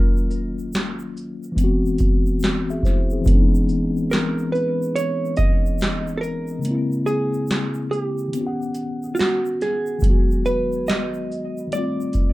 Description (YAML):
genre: lo-fi hip hop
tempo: 71 BPM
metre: 4/4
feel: swing 65% on 16ths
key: unclear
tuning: A4 = 442 Hz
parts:
  - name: vintage hollow-body jazz guitar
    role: melody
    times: 0.0-12.3 s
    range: E#4 to D#5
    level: -25 LUFS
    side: right 2 dB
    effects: low-pass filter, analog delay
  - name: mellow tine electric piano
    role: accompaniment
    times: 0.0-12.3 s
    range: C#3 to F#5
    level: -24 LUFS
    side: left 2 dB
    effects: medium stereo tremolo, cassette tape, low-pass filter
  - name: egg shaker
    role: percussion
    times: 0.2-12.3 s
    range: none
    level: -48 LUFS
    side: right 4 dB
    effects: none
  - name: booming analog drum machine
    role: drums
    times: 0.3-12.3 s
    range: handclaps, hi-hat, kick drum, shaker, snare drum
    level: -20 LUFS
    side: equal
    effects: none
room: wet small room reverb, RT60 0.5 s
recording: rough home demo mix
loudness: -19 LUFS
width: side -18 dB against mid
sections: 0.0-10.0 A section; 10.0-12.3 B section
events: break 6.6-10.0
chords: 0.0 D#m9; 1.6 G#7alt; 3.3 C#m9; 6.6 A#m7b5; 8.3 D#7alt; 10.0 G#m7; 11.7 F7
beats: 0.73 1.57 2.42 | 3.26 4.11 4.95 5.80 | 6.64 7.49 8.33 9.18 | 10.02 10.87 11.71